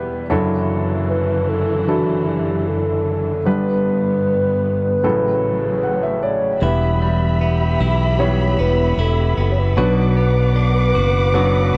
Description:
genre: pop ballad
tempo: 76 BPM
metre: 4/4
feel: straight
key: unclear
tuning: A4 = 441 Hz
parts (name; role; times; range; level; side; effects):
- warm grand piano; accompaniment; 0.0-11.8 s; F#1 to F#5; -23 LUFS; equal; none
- warm studio string section; sustained chords; 0.0-11.8 s; E2 to D6; -27 LUFS; equal; none
- hollow clarinet-like synth lead; melody; 1.1-11.8 s; F#4 to E5; -24 LUFS; equal; chorus
- direct-recorded clean electric guitar; arpeggios; 6.6-11.8 s; E2 to F#4; -28 LUFS; equal; none
- fingered electric bass; bass; 6.6-11.8 s; E1 to B1; -19 LUFS; equal; none
room: light reverb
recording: dry, close 1970s-style studio recording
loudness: -18 LUFS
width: mono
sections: 0.0-6.6 A section; 6.6-11.8 B section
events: grand piano fill 0.0-0.3, 5.4-6.6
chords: 0.3 Dadd9/F#; 3.5 G; 5.0 A6; 6.6 Em; 9.8 Bm

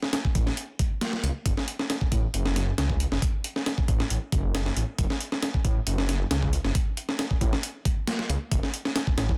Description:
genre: breakbeat, breaks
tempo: 136 BPM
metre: 4/4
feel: straight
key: F# minor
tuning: A4 = 441 Hz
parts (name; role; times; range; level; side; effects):
- breakbeat sampler-style drum kit; drums; 0.0-9.4 s; hi-hat, kick drum, snare drum; -28 LUFS; equal; none
- detuned saw bass; bass; 0.4-9.3 s; F#1 to C#2; -29 LUFS; equal; none
room: digital ambience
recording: dense, heavily limited modern master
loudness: -27 LUFS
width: mono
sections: 0.0-9.4 A section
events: none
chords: none

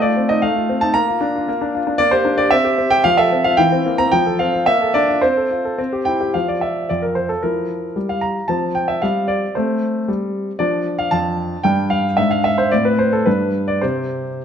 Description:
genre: classical-period piano sonatina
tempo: 112 BPM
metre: 2/4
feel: rubato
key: F major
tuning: A4 = 440 Hz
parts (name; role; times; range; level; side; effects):
- clear baby grand piano; solo; 0.0-14.4 s; F2 to Bb5; -15 LUFS; equal; none
room: moderate recital hall reverb, RT60 1.5 s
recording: close, detailed microphones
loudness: -15 LUFS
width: side -8 dB against mid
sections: 0.0-6.3 A section; 6.3-14.4 B section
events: none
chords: 0.0 F7/A; 0.9 Bb; 2.0 Gm/Bb; 2.5 C; 3.0 F; 3.6 C7/E; 4.1 F; 4.7 Bbmaj7; 5.2 F/C; 5.8 C; 6.3 N.C.; 7.4 Edim; 8.5 F5; 9.6 Gsus24; 10.6 Dm/F; 11.7 G5; 12.2 Dm9b5/Ab; 12.7 Am; 13.3 G; 13.8 C5

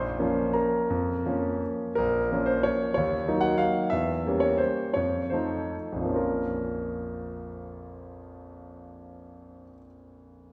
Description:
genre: classical, piano waltz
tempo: 128-194 BPM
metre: 3/4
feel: rubato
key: Bb minor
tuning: A4 = 442 Hz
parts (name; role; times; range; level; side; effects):
- clear concert grand piano; solo; 0.0-10.5 s; Bb1 to C6; -28 LUFS; equal; none
room: wet concert hall reverb, RT60 1.8 s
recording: heard from further back in the room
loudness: -27 LUFS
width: mono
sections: 0.0-2.0 A section; 2.0-6.2 B section; 6.2-8.7 C section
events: slowing down 3.4-6.2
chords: 0.0 Bbm; 3.0 Ebm7; 3.9 Edim7; 4.9 F7; 6.2 Bbm

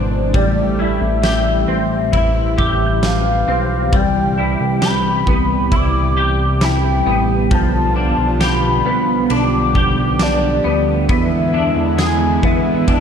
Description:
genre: dream pop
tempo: 67 BPM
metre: 4/4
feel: straight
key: unclear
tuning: A4 = 440 Hz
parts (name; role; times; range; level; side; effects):
- warm velvety synth lead; melody; 0.0-13.0 s; C5 to D6; -20 LUFS; left 1 dB; chorus, tape echo
- warm analog pad; sustained chords; 0.0-13.0 s; B2 to B4; -21 LUFS; right 1 dB; chorus
- semi-hollow electric guitar; arpeggios; 0.0-13.0 s; F3 to G#4; -20 LUFS; left 1 dB; ensemble chorus, tape echo
- chorused synth bass; bass; 0.0-13.0 s; G#1 to E2; -20 LUFS; equal; none
- huge arena drum kit; drums; 0.3-13.0 s; kick drum, ride cymbal, snare drum, tambourine; -21 LUFS; equal; none
- glockenspiel with rubber mallets; texture; 2.6-4.4 s; D6 to G6; -29 LUFS; right 3 dB; tape echo
room: light reverb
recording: dark, warm production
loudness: -13 LUFS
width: side -7 dB against mid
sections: 0.0-13.0 A section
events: none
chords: 0.3 Am7; 7.5 G7/B; 11.1 E7

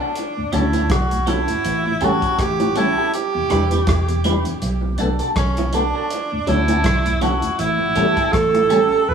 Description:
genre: roots reggae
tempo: 81 BPM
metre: 4/4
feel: swing 56% on 16ths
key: unclear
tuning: A4 = 443 Hz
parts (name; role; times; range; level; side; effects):
- bright tenor saxophone; melody; 0.0-9.1 s; C#4 to B4; -20 LUFS; right 3 dB; tape echo
- clean electric guitar; accompaniment; 0.0-9.0 s; C#4 to B4; -24 LUFS; right 2 dB; phaser
- cloth-damped thuddy drum kit; drums; 0.2-8.9 s; hi-hat, kick drum, rim click; -25 LUFS; equal; none
- mellow tonewheel organ; accompaniment; 0.4-8.8 s; D2 to D4; -26 LUFS; left 3 dB; chorus vibrato, slow rotary speaker
- vintage muted fingered electric bass; bass; 0.5-9.1 s; E1 to D2; -22 LUFS; equal; none
- bongos; percussion; 0.5-8.7 s; none; -30 LUFS; right 2 dB; tape echo
room: moderate stone room reverb, RT60 1.1 s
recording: band playing live in one room, small room ambience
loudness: -16 LUFS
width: side -7 dB against mid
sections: 0.0-9.1 A section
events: none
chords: 0.2 Dmaj7; 1.6 A7; 3.1 Em7; 4.6 Bm7; 6.1 Dmaj7; 7.6 A7

